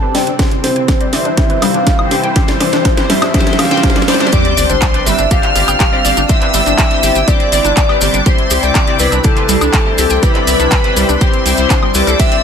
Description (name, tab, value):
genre	progressive house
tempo	122 BPM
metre	4/4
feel	straight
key	unclear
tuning	A4 = 439 Hz
part	soft octave-layered synth lead	melody	0.0-12.4 s	A4 to A5	-18 LUFS	left 1 dB	chorus, phaser, ping-pong delay
part	lush unison pad	sustained chords	0.0-12.4 s	E3 to D5	-22 LUFS	left 1 dB	chorus, phaser, sidechain pumping
part	wide unison pluck	arpeggios	0.0-12.4 s	G3 to G5	-20 LUFS	right 1 dB	lush chorus, sidechain pumping, ping-pong delay
part	chorused polysynth	stabs	0.0-12.4 s	C3 to E5	-20 LUFS	left 4 dB	phaser, sidechain pumping, ping-pong delay
part	riser and sub drop	sound effects	0.1-6.3 s	none	-22 LUFS	right 2 dB	none
part	round analog bass	bass	0.1-12.1 s	G1 to C2	-19 LUFS	equal	sidechain pumping, high-pass filter
part	house drum kit	drums	0.1-12.4 s	handclaps, hi-hat, ride cymbal, snare drum, woodblock	-18 LUFS	right 1 dB	overdrive
part	electronic kick drum	drums	0.4-12.3 s	none	-14 LUFS	equal	overdrive
part	clear studio violin section	second line	4.3-12.4 s	A5 to F6	-19 LUFS	right 1 dB	sidechain pumping
part	maracas	percussion	4.3-12.3 s	none	-21 LUFS	left 3 dB	none
room	light reverb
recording	none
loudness	-10 LUFS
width	side -7 dB against mid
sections	0.0-4.3 A section; 4.3-12.4 B section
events	build-up 0.0-4.3; drum fill 0.0-4.3; filter sweep on synth pluck 0.0-4.3; filter sweep on analog polysynth 0.0-4.3; filter sweep on soft synth lead 0.0-4.3; riser 0.1-4.3; drop 4.3-12.4; impact 4.3-6.3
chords	0.4 C; 4.3 Gsus4; 8.3 C